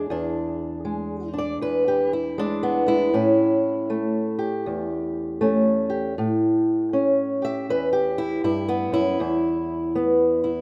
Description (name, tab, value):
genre	acoustic country blues, solo or duo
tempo	79 BPM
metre	4/4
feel	swing 62% on 8ths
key	unclear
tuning	A4 = 441 Hz
part	fingerpicked old ladder-braced acoustic guitar	solo	0.0-10.6 s	E2 to E5	-23 LUFS	equal	none
room	light reverb, small room reverb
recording	rough home demo mix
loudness	-23 LUFS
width	mono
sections	0.0-10.6 A section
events	none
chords	0.0 E7; 3.1 A7; 9.2 E5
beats	| 0.09 0.84 1.60 2.36 | 3.12 3.88 4.64 5.40 | 6.16 6.92 7.68 8.44 | 9.20 9.95